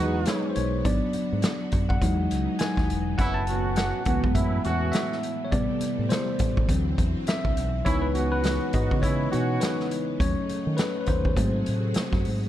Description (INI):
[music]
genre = lush 1970s-style soul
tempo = 103 BPM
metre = 4/4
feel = swing 58% on 16ths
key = C# minor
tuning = A4 = 440 Hz
[part]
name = bell-like tine electric piano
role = accompaniment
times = 0.0-12.5 s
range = C3 to A5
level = -28 LUFS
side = left 1 dB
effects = none
[part]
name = string machine, violins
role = sustained chords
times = 0.0-12.5 s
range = A2 to G#4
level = -35 LUFS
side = equal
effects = ensemble chorus
[part]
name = warm horn section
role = stabs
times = 0.0-9.9 s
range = B3 to F#4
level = -30 LUFS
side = right 4 dB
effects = none
[part]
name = fingered electric bass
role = bass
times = 0.0-12.5 s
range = E1 to D#3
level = -28 LUFS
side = equal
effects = none
[part]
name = vintage drum kit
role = drums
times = 0.3-12.4 s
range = hi-hat, kick drum, snare drum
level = -27 LUFS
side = equal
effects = none
[sound]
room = light reverb, studio ambience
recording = dark, warm production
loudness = -23 LUFS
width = side -12 dB against mid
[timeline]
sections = 0.0-12.5 A section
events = tine electric piano solo 0.0-12.5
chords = 0.0 Emaj7; 0.9 G#m7b5; 2.0 Emaj7; 3.2 F#m11; 5.5 Am7; 6.7 D9; 7.9 C#m7; 10.2 D#m7b5; 11.4 G#7b9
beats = 0.27 | 0.86 1.44 2.02 2.61 | 3.19 3.77 4.36 4.94 | 5.53 6.11 6.69 7.28 | 7.86 8.44 9.03 9.61 | 10.20 10.78 11.37 11.95